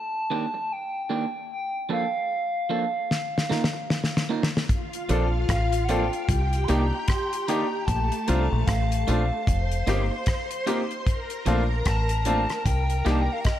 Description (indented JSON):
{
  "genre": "lovers rock reggae",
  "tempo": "75 BPM",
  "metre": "4/4",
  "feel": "swing 59% on 16ths",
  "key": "Bb major",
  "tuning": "A4 = 440 Hz",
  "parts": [
    { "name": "reedy FM lead", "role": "melody", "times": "0.0-13.6 s", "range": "Eb5 to C6", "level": "-29 LUFS", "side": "equal", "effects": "chorus, tape echo" },
    { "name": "electric guitar through a small old amp", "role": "stabs", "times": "0.3-13.3 s", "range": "Eb3 to Bb4", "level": "-31 LUFS", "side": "right 5 dB", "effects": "none" },
    { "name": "damped 70s drum kit", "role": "drums", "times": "3.1-13.6 s", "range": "hi-hat, kick drum, rim click, snare drum", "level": "-26 LUFS", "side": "left 1 dB", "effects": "none" },
    { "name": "string machine, violins", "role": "second line", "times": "4.7-13.6 s", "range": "A3 to C6", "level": "-31 LUFS", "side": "left 1 dB", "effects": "ensemble chorus, tape echo" },
    { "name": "clear baby grand piano", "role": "accompaniment", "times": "5.1-13.2 s", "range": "A3 to A4", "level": "-29 LUFS", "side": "left 2 dB", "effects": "none" },
    { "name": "deep dub fingered electric bass", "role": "bass", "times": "5.1-13.3 s", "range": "F1 to C2", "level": "-24 LUFS", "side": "equal", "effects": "none" }
  ],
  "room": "light reverb",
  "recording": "none",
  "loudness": "-23 LUFS",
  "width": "side -12 dB against mid",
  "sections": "0.0-13.6 A section",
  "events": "drum fill 3.1-4.7",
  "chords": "0.0 Ebmaj7#11; 1.5 Bbmaj7; 3.1 F7sus4; 4.7 Bbmaj7; 6.3 Cm9; 7.9 Bbmaj7; 9.5 F7sus4; 11.1 Bbmaj7; 12.7 Cm9"
}